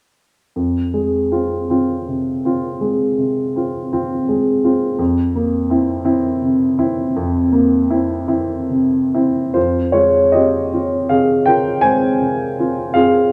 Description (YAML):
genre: classical, romantic nocturne for solo piano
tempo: 44-57 BPM (dotted quarters)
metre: 12/8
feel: rubato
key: F minor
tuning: A4 = 439 Hz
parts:
  - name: dark baby grand piano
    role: solo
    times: 0.6-13.3 s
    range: F2 to Ab5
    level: -17 LUFS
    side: equal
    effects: none
room: wet recital hall reverb, RT60 1.5 s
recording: dark, warm production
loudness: -17 LUFS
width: mono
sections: 0.6-9.6 A section; 9.6-13.3 B section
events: none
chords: 0.6 Fm; 5.0 C7/F; 9.6 Fm